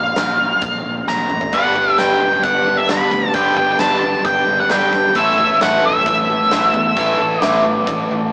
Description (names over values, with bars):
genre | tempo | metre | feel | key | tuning
classic rock | 132 BPM | 4/4 | straight | unclear | A4 = 440 Hz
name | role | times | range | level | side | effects
octave-fuzz lead guitar | melody | 0.0-8.3 s | E5 to B5 | -18 LUFS | equal | distortion
modern bright picked electric bass | bass | 0.0-8.3 s | D1 to G2 | -30 LUFS | equal | none
huge arena drum kit | drums | 0.2-8.0 s | hi-hat, kick drum, snare drum, toms | -26 LUFS | equal | none
picked twelve-string acoustic guitar | accompaniment | 1.5-8.3 s | G2 to A4 | -24 LUFS | equal | none
cranked stack guitar | riff | 1.5-8.3 s | G2 to A4 | -25 LUFS | equal | overdrive
distorted electric guitar | riff | 1.5-8.3 s | G2 to A3 | -27 LUFS | equal | overdrive
room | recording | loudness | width
moderate stone room reverb, RT60 1.2 s | rough rehearsal-room recording, warm saturation, small speaker sound | -16 LUFS | mono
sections
0.0-8.3 A section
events
drum fill 1.1-1.5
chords
0.0 Bb5; 1.5 G; 5.2 Asus2